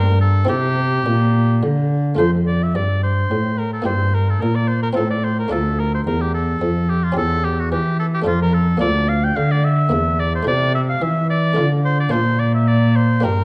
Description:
classical, baroque-style sonata movement with continuo; 108 BPM; 3/4; straight; F major; A4 = 436 Hz
clear oboe; melody; 0.0-13.4 s; F4 to G5; -24 LUFS; equal
buff-stop harpsichord; accompaniment; 0.0-13.4 s; D2 to A4; -26 LUFS; equal
warm cello; bass; 0.0-13.4 s; D2 to E3; -20 LUFS; equal
moderate recital hall reverb, RT60 1.3 s; dark, warm production; -18 LUFS; mono
0.0-2.2 A section; 2.2-13.4 A section
0.5 C; 2.2 F; 3.9 Edim/G; 5.0 F/A; 5.5 Dm; 7.2 C#dim/E; 8.3 Dm/F; 8.8 Bb/D; 9.9 C9/E; 10.5 Am/C; 11.6 Dm; 12.1 Bb
| 0.49 1.06 1.63 | 2.19 2.75 3.31 | 3.86 4.42 4.97 | 5.53 6.08 6.62 | 7.17 7.72 8.27 | 8.82 9.37 9.92 | 10.48 11.03 11.58 | 12.13 12.69 13.25

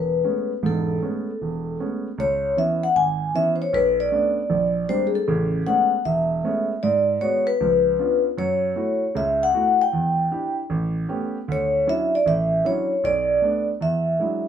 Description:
jazz; 155 BPM; 4/4; swing 67% on 8ths; A major; A4 = 440 Hz
vibraphone with medium mallets; melody; 0.0-14.4 s; Ab4 to G#5; -20 LUFS; left 2 dB
warm grand piano; accompaniment; 0.0-14.5 s; E1 to G4; -25 LUFS; right 2 dB
moderate studio reverb, RT60 0.5 s; band playing live in one room; -19 LUFS; side -8 dB against mid
0.0-2.2 A section; 2.2-14.5 B section
0.0 Amaj9; 2.2 C#m7; 3.7 Bm9; 4.5 Bb13; 5.3 Amaj9; 6.8 G#m7b5; 7.6 C#7b9; 8.4 F#m7; 9.9 Em7; 10.7 A9; 11.5 Dmaj9; 13.0 Bm7; 13.8 E9
0.25 | 0.63 1.02 1.41 1.79 | 2.18 2.57 2.95 3.34 | 3.73 4.11 4.50 4.89 | 5.28 5.66 6.05 6.44 | 6.83 7.21 7.60 7.99 | 8.38 8.77 9.15 9.54 | 9.93 10.32 10.71 11.09 | 11.48 11.87 12.26 12.64 | 13.03 13.42 13.80 14.19

